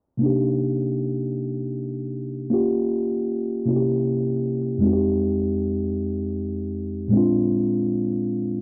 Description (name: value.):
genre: R&B.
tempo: 52 BPM (dotted quarters).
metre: 6/8.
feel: straight.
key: C minor.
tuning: A4 = 439 Hz.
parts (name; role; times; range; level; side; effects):
mellow tine electric piano; accompaniment; 0.2-8.6 s; F2 to G4; -24 LUFS; equal; none.
room: wet club reverb, RT60 0.7 s.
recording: vinyl crackle, low-pass filter.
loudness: -24 LUFS.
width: mono.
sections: 0.2-8.6 A section.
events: none.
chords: 0.2 Cm9; 2.5 Gm7b5; 3.7 C7b9; 4.8 Fm9; 7.1 Bb9.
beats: | 0.19 1.35 | 2.50 3.65 | 4.81 5.96 | 7.12 8.27.